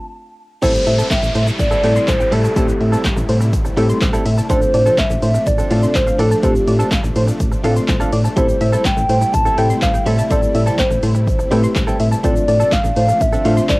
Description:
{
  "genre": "dance-pop",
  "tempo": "124 BPM",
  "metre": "4/4",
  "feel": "straight",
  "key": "A minor",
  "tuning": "A4 = 439 Hz",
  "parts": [
    { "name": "hollow clarinet-like synth lead", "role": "melody", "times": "0.0-13.8 s", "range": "G4 to A5", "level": "-18 LUFS", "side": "equal", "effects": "chorus, tape echo" },
    { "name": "soft round pluck", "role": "accompaniment", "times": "0.6-13.8 s", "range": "A3 to C5", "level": "-24 LUFS", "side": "left 1 dB", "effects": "chorus, sidechain pumping" },
    { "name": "supersaw chords", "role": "sustained chords", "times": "0.6-13.8 s", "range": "C3 to E4", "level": "-28 LUFS", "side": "equal", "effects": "sidechain pumping" },
    { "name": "tight sequenced synth", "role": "arpeggios", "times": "0.6-13.8 s", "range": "C5 to C6", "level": "-27 LUFS", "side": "left 1 dB", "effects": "chorus, sidechain pumping, tape echo" },
    { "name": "direct-recorded clean electric guitar", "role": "riff", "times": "0.6-13.6 s", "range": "F3 to A4", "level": "-24 LUFS", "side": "right 2 dB", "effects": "analog chorus" },
    { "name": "solid FM bass", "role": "bass", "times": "0.6-13.8 s", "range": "A1 to A2", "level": "-18 LUFS", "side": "equal", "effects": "sidechain pumping" },
    { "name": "punchy analog drum machine", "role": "drums", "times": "0.6-13.8 s", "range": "crash cymbal, handclaps, hi-hat, kick drum, shaker, snare drum", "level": "-20 LUFS", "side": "equal", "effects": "none" },
    { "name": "tube shaker", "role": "percussion", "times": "0.6-13.8 s", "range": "none", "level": "-41 LUFS", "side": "left 4 dB", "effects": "none" },
    { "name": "downlifter", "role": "sound effects", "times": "0.6-4.5 s", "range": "none", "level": "-28 LUFS", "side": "equal", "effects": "none" }
  ],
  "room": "light reverb",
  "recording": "home recording on cassette",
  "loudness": "-13 LUFS",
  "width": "side -22 dB against mid",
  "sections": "0.6-13.8 A section",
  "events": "stop 0.0-0.6",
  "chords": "0.0 N.C.; 0.6 Am7; 4.5 F6/A; 8.4 Am7; 12.2 F6/A"
}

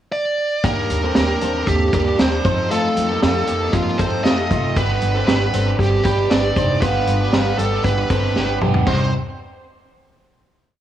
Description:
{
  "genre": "jangly indie pop",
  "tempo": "117 BPM",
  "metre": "4/4",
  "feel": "straight",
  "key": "C dorian",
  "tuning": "A4 = 443 Hz",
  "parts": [
    { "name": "high-gain lead guitar", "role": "melody", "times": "0.1-9.1 s", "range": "F4 to Eb5", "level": "-22 LUFS", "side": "right 1 dB", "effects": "distortion" },
    { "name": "crunchy overdriven guitar", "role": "accompaniment", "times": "0.6-9.1 s", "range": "G2 to A4", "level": "-26 LUFS", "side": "right 4 dB", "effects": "spring reverb" },
    { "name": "twelve-string electric guitar", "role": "arpeggios", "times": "0.6-9.1 s", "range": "A3 to C5", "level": "-24 LUFS", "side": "left 2 dB", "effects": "none" },
    { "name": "upright bass", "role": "bass", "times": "0.6-9.1 s", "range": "F1 to F2", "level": "-22 LUFS", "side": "equal", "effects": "none" },
    { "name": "vintage drum kit", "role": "drums", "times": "0.6-9.0 s", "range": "crash cymbal, hi-hat, kick drum, snare drum, toms", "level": "-20 LUFS", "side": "equal", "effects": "none" }
  ],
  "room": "light reverb",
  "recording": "worn, warbling old tape, cassette tape, warbly pitch drift, small room ambience",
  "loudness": "-16 LUFS",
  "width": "side -11 dB against mid",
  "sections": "0.0-0.6 pickup bar; 0.6-8.9 verse; 8.9-10.8 final chord",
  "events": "drum fill 8.4-8.9",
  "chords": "0.0 N.C.; 0.6 Ebmaj7; 2.4 F7; 4.8 G; 8.9 C5"
}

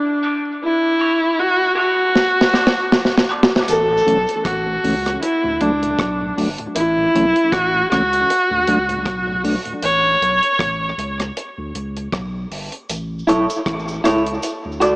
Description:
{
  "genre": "dub reggae",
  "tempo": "78 BPM",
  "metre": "4/4",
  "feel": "swing 56% on 16ths",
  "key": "D major",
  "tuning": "A4 = 440 Hz",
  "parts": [
    { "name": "warm viola", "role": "melody", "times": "0.0-10.6 s", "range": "D4 to C#5", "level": "-16 LUFS", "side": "equal", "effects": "tape echo" },
    { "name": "mellow tonewheel organ", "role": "accompaniment", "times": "0.1-9.7 s", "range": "D2 to D4", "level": "-24 LUFS", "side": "equal", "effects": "slow rotary speaker, high-pass filter, tape echo" },
    { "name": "electric guitar at the edge of break-up", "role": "accompaniment", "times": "0.2-3.5, 13.3-15.0 s", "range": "E4 to D5", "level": "-20 LUFS", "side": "equal", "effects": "spring reverb, high-pass filter, tape echo" },
    { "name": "deep reggae drum kit", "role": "drums", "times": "2.2-15.0 s", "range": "hi-hat, kick drum, rim click, snare drum", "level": "-20 LUFS", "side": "equal", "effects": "none" },
    { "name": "warm sub bass", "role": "bass", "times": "3.7-15.0 s", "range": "G1 to D2", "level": "-27 LUFS", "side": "equal", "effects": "none" },
    { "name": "cabasa", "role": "percussion", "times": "3.7-3.9, 12.9-15.0 s", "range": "none", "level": "-36 LUFS", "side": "right 1 dB", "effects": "tape echo" }
  ],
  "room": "light reverb, studio ambience",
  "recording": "echo-heavy mix, small speaker sound",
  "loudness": "-15 LUFS",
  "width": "side -24 dB against mid",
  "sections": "0.0-15.0 A section",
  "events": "filter sweep 0.0-3.7; drum fill 2.1-3.7; break 3.7-12.9",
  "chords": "0.0 D; 0.6 A; 2.1 D; 3.7 A; 5.2 D; 6.8 A; 8.3 D; 9.8 A; 11.4 G; 12.9 A; 14.4 D"
}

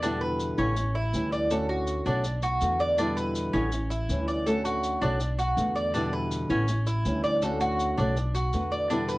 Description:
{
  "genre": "latin, Cuban son and guajira",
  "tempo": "162 BPM",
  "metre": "4/4",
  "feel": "straight",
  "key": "D major",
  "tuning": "A4 = 441 Hz",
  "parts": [
    { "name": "flamenco guitar", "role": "accompaniment", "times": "0.0-9.2 s", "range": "B2 to F#4", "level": "-29 LUFS", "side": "equal", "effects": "none" },
    { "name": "Cuban tres", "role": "arpeggios", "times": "0.0-9.2 s", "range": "C#4 to D5", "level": "-28 LUFS", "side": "right 1 dB", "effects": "none" },
    { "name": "upright bass", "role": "bass", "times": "0.0-9.2 s", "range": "A1 to E2", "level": "-30 LUFS", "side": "equal", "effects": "none" },
    { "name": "maracas", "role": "percussion", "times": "0.0-9.2 s", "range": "none", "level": "-42 LUFS", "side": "left 2 dB", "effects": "none" }
  ],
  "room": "light reverb",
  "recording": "worn, warbling old tape, cassette tape, warbly pitch drift",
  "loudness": "-24 LUFS",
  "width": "side -20 dB against mid",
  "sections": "0.0-9.2 A section",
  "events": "none",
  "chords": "0.0 Em7; 0.8 A7; 1.5 Dmaj7; 2.2 Bm7; 3.0 Em7; 3.7 A7; 4.5 Dmaj7; 5.2 Bm7; 5.9 Em7; 6.7 A7; 7.4 Dmaj7; 8.2 Bm7"
}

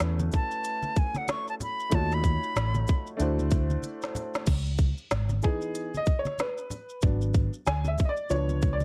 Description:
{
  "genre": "hip hop, jazz-hop",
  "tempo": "94 BPM",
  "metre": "4/4",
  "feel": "swing 60% on 16ths",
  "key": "C# minor",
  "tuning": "A4 = 440 Hz",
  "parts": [
    { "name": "warm upright piano", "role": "accompaniment", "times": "0.0-8.8 s", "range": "E3 to G#5", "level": "-35 LUFS", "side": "equal", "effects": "none" },
    { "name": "mellow fretless electric bass", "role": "bass", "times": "0.0-8.8 s", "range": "G#1 to E2", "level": "-30 LUFS", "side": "equal", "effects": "ensemble chorus" },
    { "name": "organic electronic drum kit", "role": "drums", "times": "0.0-8.8 s", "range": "crash cymbal, hi-hat, kick drum, shaker, snare drum", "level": "-30 LUFS", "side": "equal", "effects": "none" },
    { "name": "maracas and congas", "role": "percussion", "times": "0.0-8.8 s", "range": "none", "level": "-40 LUFS", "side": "equal", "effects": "none" },
    { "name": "silver concert flute", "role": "melody", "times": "0.3-3.1 s", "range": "F#5 to C#6", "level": "-34 LUFS", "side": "equal", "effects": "none" }
  ],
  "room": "little or no reverb",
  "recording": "none",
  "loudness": "-28 LUFS",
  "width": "mono",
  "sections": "0.0-4.5 A section; 4.5-8.8 A section",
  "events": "flute solo 0.0-4.5; drum fill 3.8-4.5; upright piano solo 4.5-8.8",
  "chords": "0.0 A69; 1.9 D#m7b5; 3.2 D9; 4.5 C#m9; 7.0 G#m7b5; 8.3 C#7b9"
}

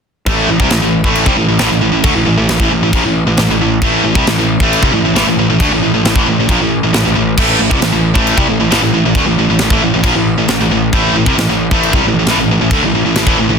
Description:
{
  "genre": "heavy metal",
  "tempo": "135 BPM",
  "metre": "4/4",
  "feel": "straight",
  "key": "A minor",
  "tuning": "A4 = 441 Hz",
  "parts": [
    { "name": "high-gain distorted guitar", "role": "riff", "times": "0.3-13.6 s", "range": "A2 to A3", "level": "-12 LUFS", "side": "equal", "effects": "distortion" },
    { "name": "fuzz picked electric bass", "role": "bass", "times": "0.3-13.6 s", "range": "A1 to D2", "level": "-18 LUFS", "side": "equal", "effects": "overdrive" },
    { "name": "tight metal drum kit", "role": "drums", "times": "0.3-13.4 s", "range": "china cymbal, crash cymbal, kick drum, snare drum", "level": "-16 LUFS", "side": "equal", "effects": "none" }
  ],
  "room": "studio ambience",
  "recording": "dense, heavily limited modern master",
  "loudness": "-10 LUFS",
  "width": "side -6 dB against mid",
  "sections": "0.3-13.6 A section",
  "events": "none",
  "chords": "0.3 Am"
}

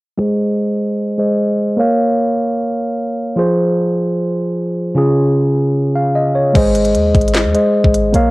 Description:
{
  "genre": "hip hop, trap",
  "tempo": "151 BPM",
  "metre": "4/4",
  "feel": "half-time",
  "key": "Ab major",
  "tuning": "A4 = 440 Hz",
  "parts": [
    { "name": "mellow tine electric piano", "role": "accompaniment", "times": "0.2-8.3 s", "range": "Db3 to F5", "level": "-13 LUFS", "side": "equal", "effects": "low-pass filter, cassette tape" },
    { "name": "clean 808-style bass", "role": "bass", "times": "6.6-8.3 s", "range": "Ab1 to Eb2", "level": "-16 LUFS", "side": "equal", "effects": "none" },
    { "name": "trap drum kit", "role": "drums", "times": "6.6-8.2 s", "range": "crash cymbal, handclaps, hi-hat, kick drum, snare drum", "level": "-17 LUFS", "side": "equal", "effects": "cassette tape" }
  ],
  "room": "moderate spring reverb, RT60 1.8 s",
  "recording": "home recording on cassette",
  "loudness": "-13 LUFS",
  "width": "side -20 dB against mid",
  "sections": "0.2-6.6 A section; 6.6-8.3 B section",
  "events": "filter sweep on tine electric piano 0.2-6.6; tine electric piano fill 5.8-6.6",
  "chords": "0.2 Ab; 1.8 Bbm; 3.4 Fm; 5.0 Db; 6.6 Ab"
}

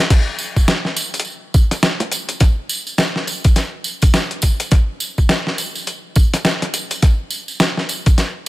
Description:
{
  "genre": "glitch hop",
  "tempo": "104 BPM",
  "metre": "4/4",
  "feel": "swing 60% on 16ths",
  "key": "none",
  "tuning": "none",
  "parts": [
    { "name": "boom bap sampler-style drum kit", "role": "drums", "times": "0.1-8.3 s", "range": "crash cymbal, hi-hat, snare drum", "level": "-18 LUFS", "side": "equal", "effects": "small room ambience" },
    { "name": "electronic kick drum", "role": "drums", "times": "0.1-8.2 s", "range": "none", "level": "-12 LUFS", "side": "equal", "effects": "small room ambience" },
    { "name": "tambourine", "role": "percussion", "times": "0.1-8.3 s", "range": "none", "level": "-25 LUFS", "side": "right 2 dB", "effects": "none" }
  ],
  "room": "little or no reverb",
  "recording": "none",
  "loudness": "-15 LUFS",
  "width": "side -18 dB against mid",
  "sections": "0.0-8.5 A section",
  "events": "none",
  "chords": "none"
}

